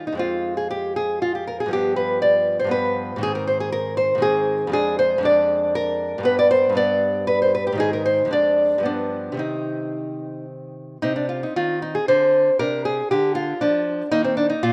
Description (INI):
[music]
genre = classical, baroque-style dance for nylon-string guitar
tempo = 117 BPM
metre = 3/4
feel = rubato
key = C minor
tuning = A4 = 441 Hz
[part]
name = nylon-string guitar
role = solo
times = 0.0-14.7 s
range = F2 to D5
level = -21 LUFS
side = equal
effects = none
[sound]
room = moderate lush hall reverb, RT60 2.4 s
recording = rough home demo mix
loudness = -21 LUFS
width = mono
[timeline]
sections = 0.0-11.0 A section; 11.0-14.7 B section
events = none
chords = 0.2 Fm; 1.7 G7; 3.2 Ab; 4.7 Ddim/F; 6.3 G; 7.8 Ab; 8.3 Ddim/F; 8.8 G7; 9.4 Cm; 12.6 C9sus4; 14.1 Eb5